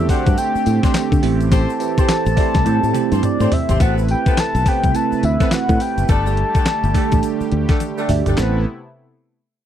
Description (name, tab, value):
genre	R&B, new jack swing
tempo	105 BPM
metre	4/4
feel	swing 61% on 16ths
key	A minor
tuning	A4 = 440 Hz
part	soft octave-layered synth lead	melody	0.0-7.8 s	D5 to A5	-22 LUFS	left 2 dB	chorus, slapback echo
part	bell-like tine electric piano	accompaniment	0.0-8.6 s	A3 to E5	-22 LUFS	right 15 dB	phaser
part	brassy analog pad	sustained chords	0.0-8.6 s	C3 to B4	-28 LUFS	left 2 dB	chorus, tremolo
part	modern bright fingered electric bass	bass	0.0-8.6 s	F#1 to D3	-18 LUFS	left 1 dB	none
part	dark horn section	stabs	0.1-8.6 s	A3 to C5	-26 LUFS	left 4 dB	slapback echo
part	crisp 8-bit digital drum machine	drums	0.1-8.5 s	handclaps, hi-hat, kick drum, snare drum, tambourine, toms	-17 LUFS	left 1 dB	overdrive
part	tube shaker	percussion	0.1-8.6 s	none	-42 LUFS	left 14 dB	none
room	little or no reverb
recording	dry, close 1970s-style studio recording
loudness	-15 LUFS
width	side -10 dB against mid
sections	0.0-3.8 A section; 3.8-8.4 B section; 8.4-9.7 C section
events	drum fill 2.7-3.8, 7.8-8.4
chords	0.0 D7sus4; 1.2 Am7; 3.8 Amadd9; 6.1 Gsus2; 8.4 Amadd9